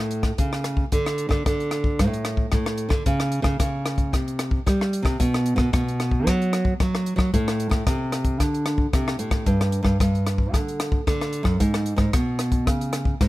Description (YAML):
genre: samba and choro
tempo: 112 BPM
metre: 4/4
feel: straight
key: D major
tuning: A4 = 440 Hz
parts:
  - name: nylon-string guitar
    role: bass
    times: 0.0-13.3 s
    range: F#2 to G3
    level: -23 LUFS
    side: right 1 dB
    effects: none
  - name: compact cocktail drum kit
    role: drums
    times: 0.1-13.3 s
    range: hi-hat, kick drum, rim click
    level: -23 LUFS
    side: left 1 dB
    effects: none
room: little or no reverb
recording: close, detailed microphones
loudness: -20 LUFS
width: side -17 dB against mid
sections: 0.9-13.3 A section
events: none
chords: none